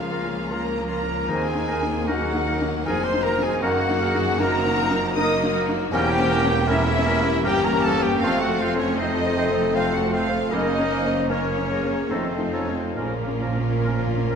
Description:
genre	classical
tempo	78 BPM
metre	3/4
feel	rubato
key	unclear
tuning	A4 = 440 Hz
part	warm baby grand piano	melody	0.0-14.4 s	Db2 to C5	-27 LUFS	left 1 dB	none
part	warm symphonic violin section	melody	0.0-14.4 s	Bb4 to Eb6	-31 LUFS	left 4 dB	none
part	bright flute section	second line	0.0-14.4 s	Bb4 to Eb6	-32 LUFS	left 1 dB	none
part	clear symphonic violin section	second line	0.0-14.4 s	Bb3 to Gb4	-34 LUFS	left 3 dB	none
part	rich symphonic viola section	accompaniment	0.0-14.4 s	Eb3 to Db4	-33 LUFS	right 2 dB	none
part	mellow French horn section	sustained chords	0.0-14.4 s	Gb4 to C5	-29 LUFS	left 5 dB	none
part	mellow trumpet	stabs	0.0-14.4 s	Bb3 to Eb5	-28 LUFS	right 2 dB	none
part	rich studio cello section	bass	0.0-14.4 s	Db2 to Bb2	-31 LUFS	right 3 dB	none
part	rich symphonic double bass section	bass	0.0-14.4 s	E1 to Eb2	-31 LUFS	right 4 dB	none
part	clear clarinet	second line	0.1-14.4 s	C4 to F4	-34 LUFS	left 1 dB	none
part	warm oboe	second line	0.1-14.4 s	A4 to C5	-34 LUFS	equal	none
part	mellow bassoon	accompaniment	0.1-14.4 s	F3 to Bb3	-35 LUFS	right 1 dB	none
part	warm trombone section	sustained chords	1.3-13.3 s	C3 to Bb3	-34 LUFS	right 4 dB	none
part	timpani	percussion	13.0-14.4 s	Bb2	-28 LUFS	right 4 dB	none
room	wet scoring stage reverb, RT60 1.7 s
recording	none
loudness	-20 LUFS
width	side -6 dB against mid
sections	0.0-14.4 A section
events	timpani fill 13.0-14.4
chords	0.0 Bbm/Db; 1.3 Ebm; 3.6 Ebm/Gb; 5.9 Edim7; 8.2 F; 10.5 Gb; 12.1 F7; 13.0 Bbm

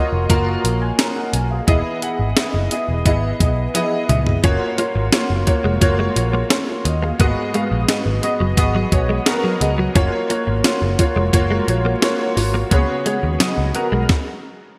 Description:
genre	1980s-style pop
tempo	87 BPM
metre	4/4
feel	straight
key	F# major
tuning	A4 = 440 Hz
part	warm concert grand piano	accompaniment	0.0-14.1 s	G#2 to A#5	-23 LUFS	equal	ensemble chorus
part	vintage muted picked electric bass	bass	0.1-14.1 s	E1 to D#2	-23 LUFS	equal	none
part	clean 12-bit digital drum machine	drums	0.3-14.3 s	hi-hat, kick drum, snare drum, toms	-21 LUFS	equal	gated reverb
part	direct-recorded clean electric guitar	riff	4.4-14.0 s	F#3 to C#4	-28 LUFS	equal	ensemble chorus
room	moderate lush hall reverb, RT60 2.7 s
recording	bright 1980s-style digital production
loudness	-18 LUFS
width	mono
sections	0.0-14.8 A section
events	drum fill 3.7-4.4; stop 14.1-14.8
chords	0.0 F#maj7; 1.7 Emaj7; 4.4 F#maj7; 7.2 G#m7; 10.0 F#maj7; 12.7 C#7sus4; 14.1 N.C.

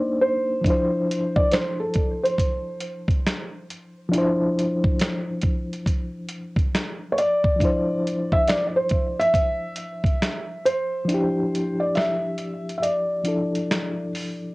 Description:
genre	lo-fi hip hop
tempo	69 BPM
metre	4/4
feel	swing 64% on 16ths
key	D minor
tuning	A4 = 440 Hz
part	felt-muted upright piano	melody	0.0-14.1 s	A4 to E5	-23 LUFS	equal	low-pass filter, tape echo
part	reed electric piano	accompaniment	0.0-14.5 s	F3 to C5	-25 LUFS	left 1 dB	fast tremolo, low-pass filter, cassette tape
part	dusty soul sampler-style drum kit	drums	0.6-14.4 s	finger snaps, hi-hat, kick drum, snare drum	-24 LUFS	equal	cassette tape
room	light reverb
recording	home recording on cassette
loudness	-21 LUFS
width	side -23 dB against mid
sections	0.0-14.5 A section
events	break 11.1-14.5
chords	0.0 Cm9; 0.6 Dm9

